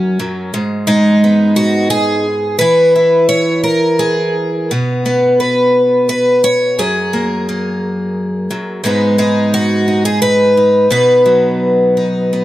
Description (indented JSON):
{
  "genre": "folk, solo fingerstyle acoustic guitar",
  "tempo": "87 BPM",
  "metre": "3/4",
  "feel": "straight",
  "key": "unclear",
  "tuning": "A4 = 443 Hz",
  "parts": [
    { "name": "picked twelve-string acoustic guitar", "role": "solo", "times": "0.0-12.4 s", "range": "F#2 to C#5", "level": "-11 LUFS", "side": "equal", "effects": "none" }
  ],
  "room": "little or no reverb",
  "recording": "close, detailed microphones",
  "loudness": "-11 LUFS",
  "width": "side -15 dB against mid",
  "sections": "0.0-12.4 A section",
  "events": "none",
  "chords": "0.0 F#; 0.5 G#m; 2.6 N.C.; 6.8 F#add9; 8.8 G#m; 10.9 B"
}